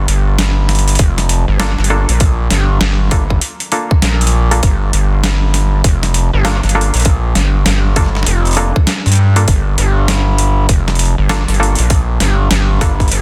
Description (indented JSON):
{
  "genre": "glitch hop",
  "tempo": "99 BPM",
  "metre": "4/4",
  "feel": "swing 62% on 16ths",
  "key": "G minor",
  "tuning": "A4 = 440 Hz",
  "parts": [
    { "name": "muted clav", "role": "stabs", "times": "0.0-12.9 s", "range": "Bb3 to A4", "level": "-24 LUFS", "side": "equal", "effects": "vintage 12-bit sampler grit, sidechain pumping, dub echo" },
    { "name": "gritty driven synth bass", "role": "bass", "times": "0.0-13.2 s", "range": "F1 to G2", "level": "-15 LUFS", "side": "equal", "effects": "overdrive" },
    { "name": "boom bap sampler-style drum kit", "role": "drums", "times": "0.1-13.2 s", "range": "hi-hat, snare drum", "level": "-20 LUFS", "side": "equal", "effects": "overdrive, studio reverb" },
    { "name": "electronic kick drum", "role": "drums", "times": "1.0-13.1 s", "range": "none", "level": "-15 LUFS", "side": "equal", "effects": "studio reverb" }
  ],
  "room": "light reverb",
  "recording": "dense, heavily limited modern master",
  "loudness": "-13 LUFS",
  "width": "mono",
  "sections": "0.0-13.2 A section",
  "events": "none",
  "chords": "0.0 Gm7"
}